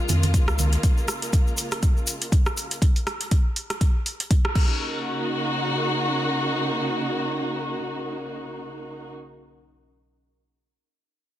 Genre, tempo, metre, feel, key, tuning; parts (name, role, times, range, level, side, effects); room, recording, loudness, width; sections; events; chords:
afro house; 121 BPM; 4/4; swing 56% on 16ths; Eb minor; A4 = 440 Hz
dark studio string section; sustained chords; 0.0-9.1 s; Db3 to Gb4; -26 LUFS; equal; sidechain pumping
warm sub bass; bass; 0.1-0.8 s; Db2 to F2; -21 LUFS; equal; sidechain pumping
deep house drum kit; drums; 0.1-4.7 s; crash cymbal, hi-hat, rim click; -29 LUFS; equal; soft clipping on snare
congas; percussion; 0.1-0.7 s; -28 LUFS; right 3 dB
tube shaker; percussion; 0.1-2.8 s; -33 LUFS; left 3 dB
electronic kick drum; drums; 0.3-4.7 s; -20 LUFS; equal
light reverb, studio reverb; dense, heavily limited modern master, faint mains hum; -21 LUFS; side -13 dB against mid
0.0-4.8 A section; 4.8-8.8 B section
drop 0.0-4.8; band accent 4.4
0.0 Db; 4.6 Ebm7